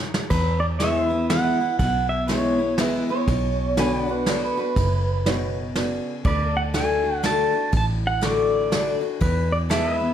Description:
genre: honky-tonk and classic country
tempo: 121 BPM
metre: 3/4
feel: swing 61% on 8ths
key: unclear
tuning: A4 = 440 Hz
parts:
  - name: picked steel-string acoustic guitar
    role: accompaniment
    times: 0.0-10.1 s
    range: E2 to F#4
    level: -25 LUFS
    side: left 4 dB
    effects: none
  - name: pedal steel guitar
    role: sustained chords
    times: 0.0-10.1 s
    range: A4 to F#5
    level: -34 LUFS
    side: equal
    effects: none
  - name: soft brush drum kit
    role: drums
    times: 0.1-9.8 s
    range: crash cymbal, kick drum, ride cymbal, snare drum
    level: -27 LUFS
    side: right 1 dB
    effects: none
  - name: pedal steel guitar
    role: melody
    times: 0.3-3.0, 6.3-10.1 s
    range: B4 to A5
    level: -24 LUFS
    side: right 2 dB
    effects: none
  - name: vintage muted fingered electric bass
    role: bass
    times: 0.3-10.1 s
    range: F#1 to E2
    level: -26 LUFS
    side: equal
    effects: none
  - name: dark upright piano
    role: accompaniment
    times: 0.8-10.1 s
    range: D4 to C#6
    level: -30 LUFS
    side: right 5 dB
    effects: none
  - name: electric guitar through a small old amp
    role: second line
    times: 3.1-5.6 s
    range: B4 to C#5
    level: -27 LUFS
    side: right 4 dB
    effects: spring reverb, tape echo
room: light reverb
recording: none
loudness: -20 LUFS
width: side -9 dB against mid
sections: 0.3-10.1 A section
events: break 0.0-0.3; drum fill 0.0-0.3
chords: 0.3 E; 3.3 Bm; 6.2 D; 9.2 E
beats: | 0.31 0.81 1.30 | 1.80 2.29 2.79 | 3.28 3.78 4.27 | 4.76 5.26 5.75 | 6.25 6.74 7.24 | 7.73 8.22 8.72 | 9.21 9.71

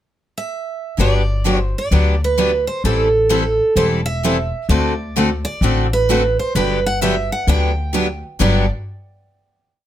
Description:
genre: acoustic string swing (jazz manouche)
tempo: 129 BPM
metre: 4/4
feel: swing 65% on 8ths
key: G major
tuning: A4 = 440 Hz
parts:
  - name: picked steel-string acoustic guitar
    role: melody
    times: 0.4-8.7 s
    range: A4 to G5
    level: -20 LUFS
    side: right 3 dB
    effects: none
  - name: picked steel-string acoustic guitar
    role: accompaniment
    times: 1.0-8.7 s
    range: G2 to A4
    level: -20 LUFS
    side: left 5 dB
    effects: none
  - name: picked steel-string acoustic guitar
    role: accompaniment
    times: 1.0-8.7 s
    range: G2 to A4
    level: -22 LUFS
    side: right 5 dB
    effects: none
  - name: upright bass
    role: bass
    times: 1.0-8.7 s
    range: E1 to D2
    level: -19 LUFS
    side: left 1 dB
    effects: none
room: light reverb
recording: close, detailed microphones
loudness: -15 LUFS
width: side -12 dB against mid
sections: 0.0-1.0 pickup bar; 1.0-8.4 A section; 8.4-9.9 final chord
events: none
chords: 0.0 N.C.; 1.0 Gmaj7; 2.8 Am7; 4.7 D7; 6.6 Gmaj7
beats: 0.06 0.52 | 0.99 1.45 1.92 2.38 | 2.85 3.31 3.78 4.24 | 4.70 5.17 5.63 6.09 | 6.56 7.02 7.48 7.95 | 8.41

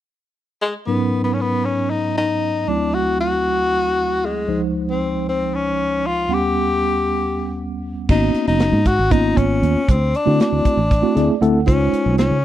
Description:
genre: electric jazz fusion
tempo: 233 BPM (eighths)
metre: 7/8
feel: straight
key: unclear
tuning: A4 = 440 Hz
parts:
  - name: clear tenor saxophone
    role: melody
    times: 0.6-12.4 s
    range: G#3 to G4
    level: -20 LUFS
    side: left 2 dB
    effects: slapback echo
  - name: mellow tine electric piano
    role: accompaniment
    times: 0.9-12.4 s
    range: C#2 to F#5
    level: -21 LUFS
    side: right 1 dB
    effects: medium stereo tremolo
  - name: fingered electric bass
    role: bass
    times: 8.1-12.4 s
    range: F#1 to D3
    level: -19 LUFS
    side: right 1 dB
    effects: none
  - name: tight funk drum kit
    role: drums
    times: 8.1-12.3 s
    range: crash cymbal, hi-hat, kick drum, snare drum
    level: -18 LUFS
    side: right 1 dB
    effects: none
room: small room ambience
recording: dry, close 1970s-style studio recording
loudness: -16 LUFS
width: side -12 dB against mid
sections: 0.9-8.1 A section; 8.1-12.4 B section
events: tine electric piano fill 10.9-11.7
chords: 0.0 N.C.; 0.9 G#m11; 2.7 D9; 4.5 C#maj9; 6.3 D#7alt; 8.1 G#m11; 9.9 D9; 11.7 C#maj9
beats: 0.10 0.36 0.62 | 0.88 1.14 1.39 1.65 1.91 2.17 2.43 | 2.68 2.94 3.20 3.46 3.72 3.97 4.23 | 4.49 4.75 5.00 5.26 5.52 5.78 6.04 | 6.29 6.55 6.81 7.06 7.32 7.58 7.83 | 8.09 8.35 8.61 8.86 9.12 9.38 9.63 | 9.89 10.14 10.40 10.65 10.91 11.17 11.42 | 11.68 11.93 12.19 12.44

